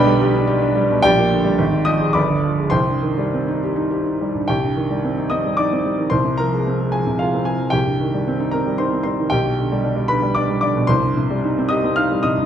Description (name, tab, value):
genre	classical, virtuoso piano study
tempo	100-116 BPM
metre	3/4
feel	rubato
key	C minor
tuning	A4 = 440 Hz
part	warm grand piano	solo	0.0-12.5 s	G1 to F6	-16 LUFS	equal	none
room	moderate recital hall reverb, RT60 1.3 s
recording	close, detailed microphones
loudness	-16 LUFS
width	side -9 dB against mid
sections	0.0-4.5 A section; 4.5-12.5 A section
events	none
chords	0.0 G/B; 1.1 Gm/Bb; 1.6 Fm/Ab; 2.2 G7b9; 2.7 Cm; 6.1 Fm/C; 7.7 Cm; 9.3 G/B; 10.9 Cm